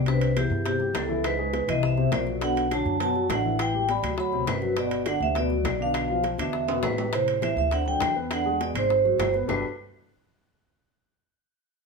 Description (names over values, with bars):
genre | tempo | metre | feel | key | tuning
Afro-Cuban jazz | 204 BPM | 4/4 | straight | G major | A4 = 441 Hz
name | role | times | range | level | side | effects
vibraphone with medium hard mallets | melody | 0.0-9.6 s | G4 to B5 | -26 LUFS | right 3 dB | none
trombone with cup mute | second line | 0.0-9.6 s | E2 to G3 | -33 LUFS | right 6 dB | none
warm grand piano | accompaniment | 0.0-9.6 s | B2 to C5 | -30 LUFS | left 7 dB | none
upright bass | bass | 0.0-9.6 s | G1 to G2 | -30 LUFS | left 2 dB | none
bongos | percussion | 0.1-9.6 s | none | -36 LUFS | left 8 dB | none
timbales | percussion | 0.1-9.6 s | none | -35 LUFS | right 6 dB | none
claves | percussion | 0.4-9.6 s | none | -39 LUFS | left 8 dB | none
room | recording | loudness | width
moderate studio reverb, RT60 0.8 s | none | -23 LUFS | side -4 dB against mid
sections
0.0-7.1 A section; 7.1-9.5 B section; 9.5-10.7 C section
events
drum fill 6.7-7.1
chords
0.1 Cmaj7; 1.2 C#m7; 1.8 C7#11; 2.4 Bm7; 3.6 A9sus4; 4.2 D6; 4.8 Gmaj7; 5.9 Bdim; 6.5 E7; 7.1 Am; 7.7 D7; 8.3 E9; 8.9 Ab7; 9.5 Gmaj9